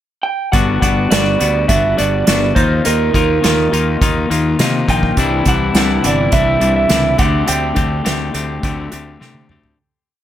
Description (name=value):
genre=indie rock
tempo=104 BPM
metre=4/4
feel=straight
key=unclear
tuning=A4 = 441 Hz
part: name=electric guitar through a small old amp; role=melody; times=0.2-9.2 s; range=Bb4 to G5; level=-18 LUFS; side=right 5 dB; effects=analog delay
part: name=semi-hollow electric guitar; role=riff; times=0.5-9.8 s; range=C3 to G4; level=-17 LUFS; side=left 4 dB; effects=spring reverb
part: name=fuzz fingered electric bass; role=bass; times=0.5-9.7 s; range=G1 to C3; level=-19 LUFS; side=equal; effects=overdrive
part: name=unplugged drum kit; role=drums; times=0.5-9.8 s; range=hi-hat, kick drum, snare drum, toms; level=-18 LUFS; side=right 1 dB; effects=none
room=light reverb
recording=none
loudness=-12 LUFS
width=side -11 dB against mid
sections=0.0-0.5 pickup bar; 0.5-9.8 verse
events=fade-out 7.5-9.8; drum fill 9.2-9.8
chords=0.0 N.C.; 0.5 Gmaj7; 2.6 Ebsus2; 5.2 Cadd9; 7.2 D7sus4